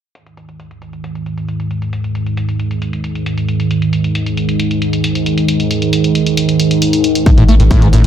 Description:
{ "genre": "driving peak-time techno", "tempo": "135 BPM", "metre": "4/4", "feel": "straight", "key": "unclear", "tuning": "A4 = 445 Hz", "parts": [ { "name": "deep dark ambient pad", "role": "drone", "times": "0.9-8.1 s", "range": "G#2 to D#3", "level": "-15 LUFS", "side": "right 1 dB", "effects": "chorus, built-in reverb, sidechain pumping" }, { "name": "electronic hi-hat", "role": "drums", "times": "0.2-8.1 s", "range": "none", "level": "-23 LUFS", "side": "left 1 dB", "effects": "sidechain pumping on hats, low-pass filter on hats, low-pass filter on room" }, { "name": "screaming distorted acid line", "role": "riff", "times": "7.3-8.1 s", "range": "G2 to A3", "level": "-12 LUFS", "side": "equal", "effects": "distortion, wide subtle chorus, sidechain pumping" }, { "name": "electronic kick drum", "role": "drums", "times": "7.3-7.8 s", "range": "none", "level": "-10 LUFS", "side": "left 1 dB", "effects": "overdrive" }, { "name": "saturated sub bass", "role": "bass", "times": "7.4-8.1 s", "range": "A1", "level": "-11 LUFS", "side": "equal", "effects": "overdrive, sidechain pumping, low-pass filter" } ], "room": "moderate digital room reverb, RT60 1.2 s", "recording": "none", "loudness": "-12 LUFS", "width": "side -10 dB against mid", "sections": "0.2-8.1 A section", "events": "filter sweep on drum 0.2-8.1", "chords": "0.2 G#5; 7.3 D#sus4" }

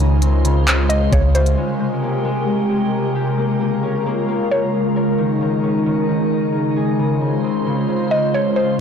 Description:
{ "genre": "hip hop, atmospheric cloud-rap", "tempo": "133 BPM", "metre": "4/4", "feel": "half-time", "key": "unclear", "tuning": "A4 = 440 Hz", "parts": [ { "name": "glassy FM pad", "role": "sustained chords", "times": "0.0-8.8 s", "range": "C3 to C5", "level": "-18 LUFS", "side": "equal", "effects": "ensemble chorus, built-in reverb, sidechain pumping" }, { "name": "concert harp", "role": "arpeggios", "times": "0.0-8.8 s", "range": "Db3 to Bb4", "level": "-24 LUFS", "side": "left 4 dB", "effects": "low-pass filter, tape echo" }, { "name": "warm 808-style bass", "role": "bass", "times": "0.0-1.6 s", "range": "Db2", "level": "-16 LUFS", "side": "equal", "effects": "none" }, { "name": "trap drum kit", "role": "drums", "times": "0.2-1.6 s", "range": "handclaps, hi-hat, kick drum", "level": "-20 LUFS", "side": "equal", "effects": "none" }, { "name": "mallet-like synth pluck", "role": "melody", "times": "0.9-1.6, 4.5-4.7, 8.1-8.8 s", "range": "C5 to Eb5", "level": "-22 LUFS", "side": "left 1 dB", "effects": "chorus, low-pass filter, tape echo" } ], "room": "light reverb", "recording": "blown-out, overdriven recording, overdrive", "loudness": "-16 LUFS", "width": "side -7 dB against mid", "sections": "0.0-1.6 A section; 1.6-8.8 B section", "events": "none", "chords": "0.0 Dbmaj7; 1.6 Abmaj9; 3.4 Bbm7; 5.2 Eb7sus4; 7.0 Dbmaj7" }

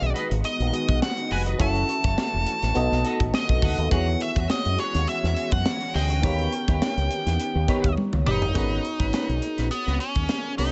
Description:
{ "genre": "polished 1980s jazz-funk pop", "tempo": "104 BPM", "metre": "4/4", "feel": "swing 54% on 16ths", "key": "G# minor", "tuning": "A4 = 442 Hz", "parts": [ { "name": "nasal lead guitar with a parked wah", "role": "melody", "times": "0.0-10.7 s", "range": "B3 to A5", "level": "-31 LUFS", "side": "equal", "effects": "overdrive" }, { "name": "FM electric piano", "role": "accompaniment", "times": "0.0-10.7 s", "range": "B3 to E5", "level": "-33 LUFS", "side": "equal", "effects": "subtle chorus" }, { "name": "soft string machine", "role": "sustained chords", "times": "0.0-8.5 s", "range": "D#3 to G4", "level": "-37 LUFS", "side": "equal", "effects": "phaser, ensemble chorus" }, { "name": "clean electric guitar", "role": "riff", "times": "0.0-10.7 s", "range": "C#4 to F#5", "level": "-36 LUFS", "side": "equal", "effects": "ensemble chorus" }, { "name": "fingered electric bass with an envelope filter", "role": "bass", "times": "0.0-10.7 s", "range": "E1 to F#2", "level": "-28 LUFS", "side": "equal", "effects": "none" }, { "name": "tight funk drum kit", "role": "drums", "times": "0.0-10.7 s", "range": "hi-hat, kick drum, snare drum, toms", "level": "-29 LUFS", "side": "equal", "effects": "gated reverb" } ], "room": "little or no reverb", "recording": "nothing above 7.9 kHz", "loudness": "-24 LUFS", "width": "mono", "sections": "0.0-8.6 A section; 8.6-10.7 B section", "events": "drum fill 8.0-8.6", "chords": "0.0 G#m7; 1.6 F#m7; 2.8 B7; 3.9 E69; 6.2 D#7b13; 8.6 G#m11" }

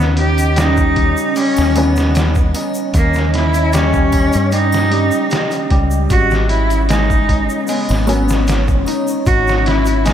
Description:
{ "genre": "trip hop", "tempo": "76 BPM", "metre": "4/4", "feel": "straight", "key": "G# minor", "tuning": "A4 = 440 Hz", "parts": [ { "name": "clear cello", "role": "melody", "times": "0.0-10.1 s", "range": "A#3 to G4", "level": "-18 LUFS", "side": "equal", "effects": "tape echo" }, { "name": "deep dark ambient pad", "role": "sustained chords", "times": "0.0-10.1 s", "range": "C#4 to D#5", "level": "-20 LUFS", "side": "left 1 dB", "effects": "chorus, built-in reverb" }, { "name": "Celtic harp", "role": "arpeggios", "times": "0.0-10.1 s", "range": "G3 to D#4", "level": "-23 LUFS", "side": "equal", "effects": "tape echo" }, { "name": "deep dub fingered electric bass", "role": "bass", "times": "0.0-10.1 s", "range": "G#1 to G2", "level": "-16 LUFS", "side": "equal", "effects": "none" }, { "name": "trip hop sampler-style drum kit", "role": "drums", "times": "0.0-10.1 s", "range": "hi-hat, kick drum, snare drum", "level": "-19 LUFS", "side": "equal", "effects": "small room reverb" }, { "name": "egg shaker and triangle", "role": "percussion", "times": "0.4-10.1 s", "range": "none", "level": "-34 LUFS", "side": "left 3 dB", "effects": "none" }, { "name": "felt-muted upright piano", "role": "accompaniment", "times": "1.8-1.9, 8.1-8.2 s", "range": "E3 to C#4", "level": "-24 LUFS", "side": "left 1 dB", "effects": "none" } ], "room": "moderate plate reverb, RT60 2.3 s", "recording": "dreamy mix soaked in reverb", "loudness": "-12 LUFS", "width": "side -10 dB against mid", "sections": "0.0-10.1 A section", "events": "none", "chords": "0.0 D#7; 6.1 G#madd11" }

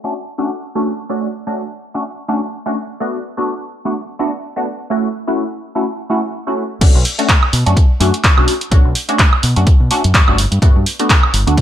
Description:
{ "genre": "filtered disco house", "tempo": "126 BPM", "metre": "4/4", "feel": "swing 56% on 16ths", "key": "B minor", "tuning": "A4 = 440 Hz", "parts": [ { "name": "funky polysynth comp", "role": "accompaniment", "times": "0.0-11.6 s", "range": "A3 to F#4", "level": "-19 LUFS", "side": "equal", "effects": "chorus, phaser, sidechain pumping, low-pass filter" }, { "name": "deep dub fingered electric bass", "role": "bass", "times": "6.8-11.6 s", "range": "G1 to B2", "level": "-15 LUFS", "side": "equal", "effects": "sidechain pumping, low-pass filter" }, { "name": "electronic kick drum", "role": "drums", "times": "6.8-11.6 s", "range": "none", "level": "-11 LUFS", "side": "equal", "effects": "none" }, { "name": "punchy analog drum machine", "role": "drums", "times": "6.8-11.6 s", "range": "crash cymbal, handclaps, hi-hat, woodblock", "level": "-16 LUFS", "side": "right 1 dB", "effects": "gated reverb" } ], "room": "light reverb", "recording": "bright 1980s-style digital production", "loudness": "-13 LUFS", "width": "side -11 dB against mid", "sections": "0.0-6.8 A section; 6.8-11.6 B section", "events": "filter sweep on analog polysynth 0.0-6.8; drop 6.8-11.6", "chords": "0.0 Aadd11; 2.8 Bm7/A; 4.7 F#m7; 6.8 Bm9; 10.4 Gmaj9" }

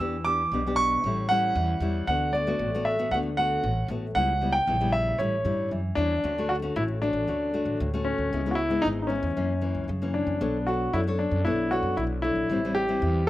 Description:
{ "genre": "samba", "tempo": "115 BPM", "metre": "4/4", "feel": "straight", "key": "D major from 6.2 s", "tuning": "A4 = 439 Hz", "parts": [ { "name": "warm concert grand piano", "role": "melody", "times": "0.0-13.3 s", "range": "C#4 to E6", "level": "-26 LUFS", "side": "equal", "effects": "slapback echo" }, { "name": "nylon-string guitar", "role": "accompaniment", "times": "0.0-13.3 s", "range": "F#2 to C#5", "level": "-30 LUFS", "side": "left 3 dB", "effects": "none" }, { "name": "upright bass", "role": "bass", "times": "0.0-13.3 s", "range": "G#1 to G2", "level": "-30 LUFS", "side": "equal", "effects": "none" } ], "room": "little or no reverb", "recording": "recorded outdoors, with no room sound", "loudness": "-24 LUFS", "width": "side -15 dB against mid", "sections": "0.0-6.2 A section; 6.2-13.3 B section", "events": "none", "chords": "0.0 Em7; 1.0 A7; 2.1 D6; 4.2 C#m7b5; 5.2 A7; 6.2 Dmaj7; 8.3 C#m7; 9.4 F#7; 10.4 Bm9; 12.5 Am7" }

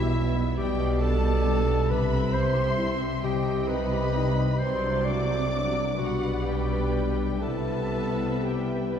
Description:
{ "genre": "classical", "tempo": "37-46 BPM (dotted quarters)", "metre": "6/8", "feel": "rubato", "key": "unclear", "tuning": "A4 = 440 Hz", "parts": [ { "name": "muted studio violin section", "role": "melody", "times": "0.0-9.0 s", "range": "D5 to E5", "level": "-38 LUFS", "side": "left 4 dB", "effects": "none" }, { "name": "muted studio violin section", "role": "second line", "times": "0.0-9.0 s", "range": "E5 to D6", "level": "-35 LUFS", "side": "left 2 dB", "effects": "none" }, { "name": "warm clarinet", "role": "second line", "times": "0.0-9.0 s", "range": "E4 to D5", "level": "-30 LUFS", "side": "equal", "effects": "none" }, { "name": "muted chamber viola section", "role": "accompaniment", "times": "0.0-9.0 s", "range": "F#3 to B4", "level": "-34 LUFS", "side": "equal", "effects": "none" }, { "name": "warm French horn section", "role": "sustained chords", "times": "0.0-9.0 s", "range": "F#3 to E4", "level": "-35 LUFS", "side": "left 4 dB", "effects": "none" }, { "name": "concert harp", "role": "arpeggios", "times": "0.0-9.0 s", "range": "E2 to B4", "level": "-35 LUFS", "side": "left 6 dB", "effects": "none" }, { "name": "muted studio cello section", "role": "bass", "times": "0.0-9.0 s", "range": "B2 to C3", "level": "-30 LUFS", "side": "right 2 dB", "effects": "none" }, { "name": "muted studio double bass section", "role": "bass", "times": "0.0-9.0 s", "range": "B1 to C2", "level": "-29 LUFS", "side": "right 1 dB", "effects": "none" } ], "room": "wet concert hall reverb, RT60 2.1 s", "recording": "heard from further back in the room", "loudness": "-23 LUFS", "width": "side -8 dB against mid", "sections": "0.0-9.0 A section", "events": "none", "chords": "0.0 Em; 0.6 G/B; 1.9 C; 3.2 Cm; 4.6 D7/C; 6.0 G/B; 7.4 Cmaj7" }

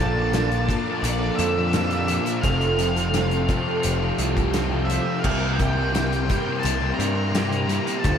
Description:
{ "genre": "rock, shoegaze and dream pop", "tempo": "86 BPM", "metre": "4/4", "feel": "straight", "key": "unclear", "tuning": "A4 = 442 Hz", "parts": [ { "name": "octave-fuzz lead guitar", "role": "melody", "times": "0.0-8.2 s", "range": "D5 to Bb5", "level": "-28 LUFS", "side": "left 1 dB", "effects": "distortion, diffuse ambient delay" }, { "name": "ensemble organ-string", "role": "sustained chords", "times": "0.0-8.2 s", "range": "Bb3 to D6", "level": "-32 LUFS", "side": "equal", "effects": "ensemble chorus" }, { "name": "picked twelve-string acoustic guitar", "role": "arpeggios", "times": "0.0-8.2 s", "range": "F4 to Bb4", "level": "-31 LUFS", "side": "right 7 dB", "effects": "ensemble chorus, diffuse ambient delay" }, { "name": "overdriven semi-hollow guitar", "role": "riff", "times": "0.0-8.2 s", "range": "F2 to G4", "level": "-31 LUFS", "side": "right 8 dB", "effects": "reverse reverb" }, { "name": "raw garage guitar", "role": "riff", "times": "0.0-8.2 s", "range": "F2 to E4", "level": "-31 LUFS", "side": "equal", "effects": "overdrive" }, { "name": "thick fuzz guitar", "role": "riff", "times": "0.0-8.2 s", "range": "F2 to D4", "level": "-28 LUFS", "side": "left 9 dB", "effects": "distortion, ensemble chorus" }, { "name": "overdriven picked electric bass", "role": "bass", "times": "0.0-8.2 s", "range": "F1 to G2", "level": "-25 LUFS", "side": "equal", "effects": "none" }, { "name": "loose indie drum kit", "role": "drums", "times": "0.3-8.2 s", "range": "crash cymbal, hi-hat, kick drum, snare drum", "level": "-27 LUFS", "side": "equal", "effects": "none" } ], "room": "light reverb, small room reverb", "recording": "none", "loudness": "-20 LUFS", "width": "side -8 dB against mid", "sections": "0.0-8.2 A section", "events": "none", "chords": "0.0 Bbmaj7; 2.4 Fadd9; 5.2 C5" }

